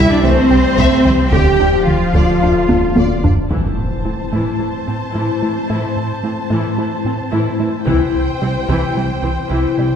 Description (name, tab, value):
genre	cinematic, hybrid orchestral and electronic film score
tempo	110 BPM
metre	4/4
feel	straight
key	A minor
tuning	A4 = 440 Hz
part	warm symphonic violin section	melody	0.0-3.3 s	A4 to E5	-25 LUFS	left 3 dB	none
part	dark symphonic violin section	second line	0.0-10.0 s	C5 to A5	-23 LUFS	left 2 dB	none
part	rich symphonic viola section	accompaniment	0.0-9.8 s	E3 to E4	-21 LUFS	left 2 dB	none
part	dark French horn section	sustained chords	0.0-10.0 s	E3 to G4	-24 LUFS	left 3 dB	none
part	woody wave-folded pluck	arpeggios	0.0-9.9 s	C3 to E4	-24 LUFS	right 1 dB	chorus, ping-pong delay
part	rubbery square bass	riff	0.0-9.9 s	C2 to A3	-21 LUFS	right 1 dB	none
part	pure sine sub bass	bass	0.0-3.5 s	D1 to C2	-23 LUFS	equal	none
part	warm studio double bass section	bass	0.0-3.3 s	C2 to D2	-22 LUFS	right 2 dB	none
part	warm symphonic cello section	bass	0.0-9.9 s	A2 to G4	-20 LUFS	right 2 dB	none
part	warm trombone section	sustained chords	0.2-2.6 s	D3 to C4	-25 LUFS	right 3 dB	none
part	taiko ensemble	drums	0.8-4.6, 7.9-8.9 s	none	-19 LUFS	equal	none
part	impact	sound effects	3.5-5.7 s	none	-23 LUFS	equal	none
room	wet scoring stage reverb, RT60 1.7 s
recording	heard from further back in the room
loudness	-13 LUFS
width	side -8 dB against mid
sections	0.0-3.5 A section; 3.5-10.0 B section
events	drum fill 2.7-3.5; impact 3.5-5.7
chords	0.0 C; 1.3 Dm; 3.5 Am; 7.9 C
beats	0.24 0.78 | 1.33 1.87 2.42 2.96 | 3.51 4.05 4.60 5.15 | 5.69 6.24 6.78 7.33 | 7.87 8.42 8.96 9.51